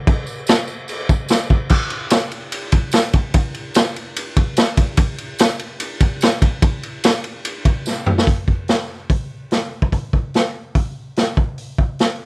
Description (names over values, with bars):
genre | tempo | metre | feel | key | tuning
rock | 146 BPM | 4/4 | straight | none | none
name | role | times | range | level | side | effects
raw garage drum kit | drums | 0.1-12.1 s | crash cymbal, hi-hat, kick drum, ride cymbal, snare drum, toms | -16 LUFS | equal | none
tambourine | percussion | 0.3-7.9 s | none | -33 LUFS | right 6 dB | none
room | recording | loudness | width
little or no reverb | dry, close 1970s-style studio recording | -16 LUFS | side -28 dB against mid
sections
0.0-1.7 A section; 1.7-8.3 B section; 8.3-12.3 C section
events
drum fill 7.8-8.3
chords
none